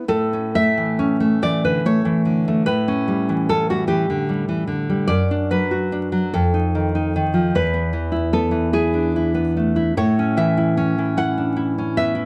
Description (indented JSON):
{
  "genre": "romantic piece for solo classical guitar",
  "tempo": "49 BPM (dotted quarters)",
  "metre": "6/8",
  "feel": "rubato",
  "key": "A major",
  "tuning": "A4 = 441 Hz",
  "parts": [
    { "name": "nylon-string guitar", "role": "solo", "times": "0.0-12.3 s", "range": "E2 to F#5", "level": "-20 LUFS", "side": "equal", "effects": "none" }
  ],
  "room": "moderate studio reverb, RT60 0.6 s",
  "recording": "vinyl crackle",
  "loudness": "-20 LUFS",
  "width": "mono",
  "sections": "0.1-12.3 A section",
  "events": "none",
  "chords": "0.1 A; 2.6 A7; 5.1 D/F#; 6.3 F7; 7.5 E; 9.9 A"
}